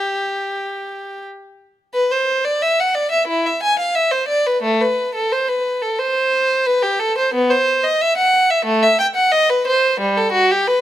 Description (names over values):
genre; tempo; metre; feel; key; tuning
classical, baroque-style suite movement for unaccompanied violin; 89 BPM; 4/4; rubato; E minor; A4 = 442 Hz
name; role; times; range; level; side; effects
rich violin; solo; 0.0-10.8 s; G3 to G#5; -15 LUFS; equal; none
room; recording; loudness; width
moderate stone room reverb, RT60 1.3 s; close, detailed microphones; -15 LUFS; side -12 dB against mid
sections
0.0-1.9 A section; 1.9-10.8 A section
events
none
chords
none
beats
0.54 1.23 | 1.93 2.60 3.27 3.94 | 4.63 5.31 5.99 6.66 | 7.34 8.02 8.69 9.36 | 10.04 10.71